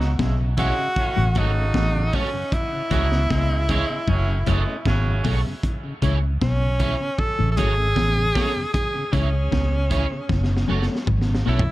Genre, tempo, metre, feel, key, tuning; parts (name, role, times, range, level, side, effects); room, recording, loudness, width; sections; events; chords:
roots reggae; 77 BPM; 4/4; straight; C# minor; A4 = 441 Hz
clear horn section; second line; 0.0-5.4 s; A2 to D#5; -31 LUFS; right 3 dB; dub echo
mellow tonewheel organ; accompaniment; 0.0-11.7 s; F#2 to C#4; -32 LUFS; left 2 dB; slow rotary speaker
clean electric guitar; riff; 0.0-11.6 s; F#2 to C#3; -29 LUFS; left 6 dB
vintage muted fingered electric bass; bass; 0.0-11.6 s; F#1 to C#2; -21 LUFS; equal
crunchy breakbeat drum kit; drums; 0.0-11.7 s; hi-hat, kick drum, snare drum, toms; -25 LUFS; equal; dub echo
warm tenor saxophone; melody; 0.6-11.7 s; C#4 to A4; -26 LUFS; equal; dub echo
electric guitar at the edge of break-up; accompaniment; 0.6-11.6 s; C#4 to C#5; -32 LUFS; right 4 dB; ensemble chorus, dub echo
little or no reverb; -19 LUFS; side -17 dB against mid
0.0-11.7 A section
drum fill 10.3-11.7
0.0 C#m; 1.0 F#m; 2.5 C#m; 4.1 F#m; 5.6 C#m; 7.2 F#m; 8.7 C#m; 10.3 F#m